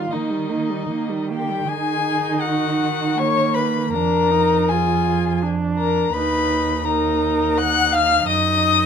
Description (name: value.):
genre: classical, slow romantic movement for string quartet.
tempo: 82 BPM.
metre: 3/4.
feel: uneven beats, rubato.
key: Eb minor.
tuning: A4 = 439 Hz.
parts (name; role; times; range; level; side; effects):
muted violin; melody; 0.0-8.9 s; Eb5 to Gb6; -22 LUFS; left 10 dB; none.
muted violin; second line; 0.0-8.9 s; Eb4 to Gb5; -23 LUFS; left 2 dB; none.
muted viola; accompaniment; 0.0-8.9 s; G3 to F4; -24 LUFS; right 4 dB; none.
muted cello; bass; 0.1-8.9 s; Eb2 to Eb3; -23 LUFS; right 5 dB; none.
room: light reverb.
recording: close, detailed microphones.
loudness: -17 LUFS.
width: side -7 dB against mid.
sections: 0.0-1.7 A section; 1.7-8.9 B section.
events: none.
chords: 0.0 Eb; 1.7 Ebm; 3.9 Bb7/F; 6.1 Eb5; 8.3 Ebm/Gb.